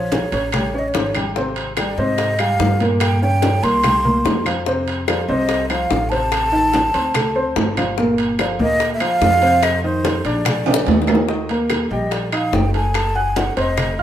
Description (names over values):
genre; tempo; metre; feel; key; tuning
Afro-Cuban jazz; 145 BPM; 4/4; straight; Eb major; A4 = 443 Hz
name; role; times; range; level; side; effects
breathy mellow concert flute; melody; 0.0-14.0 s; C5 to C6; -20 LUFS; right 1 dB; none
warm baby grand piano; accompaniment; 0.0-14.0 s; Bb2 to Gb6; -22 LUFS; equal; none
upright bass; bass; 0.0-14.0 s; F1 to Ab2; -23 LUFS; equal; none
bongos; percussion; 0.1-14.0 s; none; -25 LUFS; left 5 dB; none
congas; percussion; 0.1-14.0 s; none; -26 LUFS; left 1 dB; none
timbales; percussion; 0.1-14.0 s; none; -24 LUFS; right 4 dB; none
claves; percussion; 0.5-14.0 s; none; -29 LUFS; left 5 dB; none
room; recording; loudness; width
moderate stone room reverb, RT60 1.0 s; band playing live in one room; -16 LUFS; side -11 dB against mid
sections
0.0-11.3 A section; 11.3-14.0 B section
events
drum fill 10.5-11.3; flute solo 11.3-14.0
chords
0.0 Bbm; 0.5 A7; 1.4 Abmaj9; 3.0 Gdim; 3.8 C5; 4.7 F5; 6.3 Adim; 7.2 D5; 8.0 Gm7; 9.6 F5; 10.5 Bb7; 11.3 Eb; 13.0 Gbm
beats
0.12 0.53 0.94 | 1.36 1.77 2.19 2.60 | 3.01 3.43 3.84 4.25 | 4.67 5.08 5.50 5.91 | 6.32 6.74 7.15 7.56 | 7.98 8.39 8.80 9.22 | 9.63 10.05 10.46 10.88 | 11.29 11.71 12.12 12.54 | 12.95 13.37 13.78